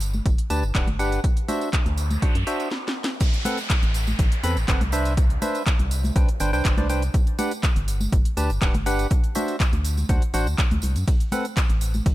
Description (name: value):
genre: piano house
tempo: 122 BPM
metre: 4/4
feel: straight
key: A dorian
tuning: A4 = 441 Hz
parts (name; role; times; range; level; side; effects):
- organ-like FM bass; bass; 0.0-12.1 s; D1 to F#2; -24 LUFS; equal; sidechain pumping
- house drum kit; drums; 0.0-12.1 s; cabasa, crash cymbal, handclaps, hi-hat, ride cymbal, snare drum; -30 LUFS; equal; none
- tambourine and congas; percussion; 0.0-12.1 s; none; -33 LUFS; equal; none
- electronic kick drum; drums; 0.3-12.1 s; none; -21 LUFS; equal; none
- percussive organ stab; riff; 0.5-11.5 s; C4 to B5; -28 LUFS; equal; chorus, sidechain pumping, ping-pong delay
- noise sweep and downlifter; sound effects; 1.8-7.1 s; none; -34 LUFS; equal; none
room: digital ambience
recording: none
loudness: -20 LUFS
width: side -16 dB against mid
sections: 0.0-3.2 A section; 3.2-12.1 B section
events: noise sweep 1.8-3.2; drum fill 2.7-3.2; stop 2.7-3.2; drop 3.2-12.1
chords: 0.0 Gmaj7; 1.2 D9; 3.2 Am69; 4.9 Cmaj9; 7.1 Gmaj7; 9.1 D9; 11.1 Am69